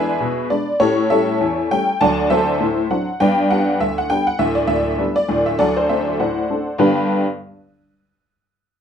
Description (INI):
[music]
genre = ragtime piano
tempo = 100 BPM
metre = 2/4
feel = swing 56% on 16ths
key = G major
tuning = A4 = 441 Hz
[part]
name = honky-tonk upright piano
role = solo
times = 0.0-7.2 s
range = D1 to A5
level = -16 LUFS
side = equal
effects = none
[sound]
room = moderate small room reverb, RT60 0.5 s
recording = minimal, uncompressed stereo recording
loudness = -16 LUFS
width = side -8 dB against mid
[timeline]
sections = 0.0-6.8 A section; 6.8-8.0 B section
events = none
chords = 0.0 E7; 0.8 A7; 2.0 D7; 3.2 G/D; 5.6 D7; 6.8 G